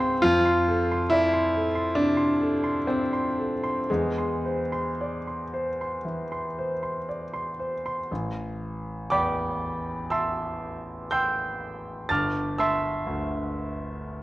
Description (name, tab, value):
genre	classical, impressionist solo piano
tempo	54-71 BPM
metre	4/4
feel	rubato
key	A minor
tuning	A4 = 438 Hz
part	clear grand piano	solo	0.0-14.2 s	G1 to A6	-24 LUFS	equal	none
room	wet recital hall reverb, RT60 1.3 s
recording	worn, warbling old tape, cassette tape, warbly pitch drift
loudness	-24 LUFS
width	side -17 dB against mid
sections	0.0-8.1 A section; 8.1-14.2 B section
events	none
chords	0.2 F6; 3.9 Eaug7; 8.1 Amadd9; 12.1 Gsus2